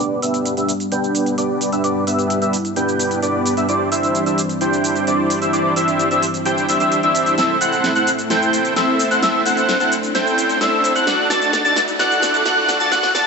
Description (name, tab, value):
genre	EDM, festival progressive house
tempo	130 BPM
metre	4/4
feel	straight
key	G major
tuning	A4 = 440 Hz
part	lush unison pad	sustained chords	0.0-13.3 s	G2 to F#4	-25 LUFS	equal	chorus
part	wide unison lead	arpeggios	0.0-13.3 s	D6 to A6	-19 LUFS	equal	lush chorus, ping-pong delay
part	dense compressed supersaw	riff	0.0-13.3 s	B3 to A5	-19 LUFS	right 1 dB	low-pass filter, ping-pong delay
part	big-room dance drum kit	drums	0.0-13.2 s	hi-hat, shaker, snare drum	-25 LUFS	right 1 dB	none
part	riser	sound effects	0.0-13.3 s	none	-32 LUFS	left 1 dB	none
room	moderate huge ambient reverb, RT60 5.3 s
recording	high-pass filter, nothing above 8.0 kHz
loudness	-15 LUFS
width	side -4 dB against mid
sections	0.0-13.3 A section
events	build-up 0.0-13.3; filter sweep on supersaw synth 0.0-13.3; filter sweep on analog synth lead 0.0-13.3; filter sweep on analog synth pad 0.0-13.3; filter sweep 0.0-13.3; drum fill 7.4-13.3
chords	0.0 G; 3.7 Cadd9/G; 7.4 Am; 11.1 D/A